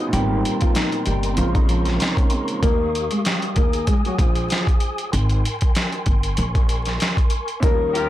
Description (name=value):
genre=hip hop, boom-bap hip-hop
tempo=96 BPM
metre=4/4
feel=swing 55% on 16ths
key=unclear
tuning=A4 = 439 Hz
part: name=dark upright piano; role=accompaniment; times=0.0-2.6, 7.6-8.1 s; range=Eb2 to Gb4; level=-26 LUFS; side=right 2 dB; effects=high-pass filter, low-pass filter
part: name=mellow tonewheel organ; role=sustained chords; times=0.0-8.1 s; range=G4 to Eb6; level=-29 LUFS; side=equal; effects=chorus vibrato, fast rotary speaker, high-pass filter, low-pass filter
part: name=nylon-string guitar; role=melody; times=0.1-8.1 s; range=F3 to Eb5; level=-24 LUFS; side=left 2 dB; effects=high-pass filter, low-pass filter, tape echo
part: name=upright bass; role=bass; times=0.1-8.1 s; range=G1 to Eb2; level=-22 LUFS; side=equal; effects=transformer saturation
part: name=boom bap sampler-style drum kit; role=drums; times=0.1-8.1 s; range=hi-hat, kick drum, snare drum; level=-20 LUFS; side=equal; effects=none
part: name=clear horn section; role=stabs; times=7.9-8.1 s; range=F4 to Bb4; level=-23 LUFS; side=left 3 dB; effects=high-pass filter, low-pass filter
room=light reverb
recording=blown-out, overdriven recording, vinyl crackle, overdrive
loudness=-18 LUFS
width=side -14 dB against mid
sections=0.0-8.1 A section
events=none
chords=0.1 Abmaj9; 1.4 Bbm9; 2.6 Eb9; 3.6 Bb7sus4; 5.1 Abmaj9; 6.4 Bbm9